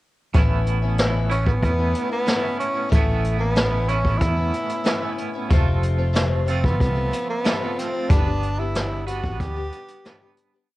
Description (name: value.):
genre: folk rock and heartland rock.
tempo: 93 BPM.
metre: 4/4.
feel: straight.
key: A mixolydian.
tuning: A4 = 440 Hz.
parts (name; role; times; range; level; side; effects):
picked acoustic archtop guitar; accompaniment; 0.3-10.7 s; F2 to G4; -30 LUFS; left 7 dB; cassette tape.
twangy electric guitar; riff; 0.3-10.7 s; A2 to B4; -30 LUFS; right 6 dB; tremolo, cassette tape.
fingered electric bass; bass; 0.3-9.7 s; F1 to E2; -22 LUFS; equal; none.
jazz brush drum kit; drums; 0.3-10.5 s; hi-hat, kick drum, snare drum; -22 LUFS; equal; cassette tape.
breathy tenor saxophone; melody; 1.3-10.3 s; A3 to G4; -26 LUFS; right 1 dB; cassette tape.
room: small room ambience.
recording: home recording on cassette.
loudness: -19 LUFS.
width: side -18 dB against mid.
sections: 0.3-10.7 verse.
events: fade-out 8.1-10.7.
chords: 0.3 Aadd9; 5.5 F; 8.1 G.